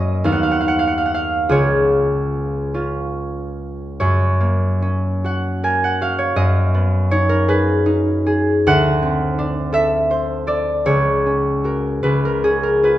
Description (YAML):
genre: classical, solo harp piece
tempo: 46-56 BPM (dotted quarters)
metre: 6/8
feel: rubato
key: F# major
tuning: A4 = 442 Hz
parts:
  - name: concert harp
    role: solo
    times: 0.0-13.0 s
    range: C#2 to G#5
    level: -16 LUFS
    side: equal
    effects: none
room: wet recital hall reverb, RT60 1.4 s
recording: none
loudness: -16 LUFS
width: side -13 dB against mid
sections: 0.0-4.0 A section; 4.0-13.0 B section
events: none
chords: 0.3 B/D#; 1.5 C#; 4.0 F#; 6.4 G#m7/F#; 8.7 D7; 10.9 F#/C#; 12.0 C#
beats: 0.25 | 1.47 2.73 | 3.98 5.24 | 6.37 7.46 | 8.68 9.76 | 10.87 12.04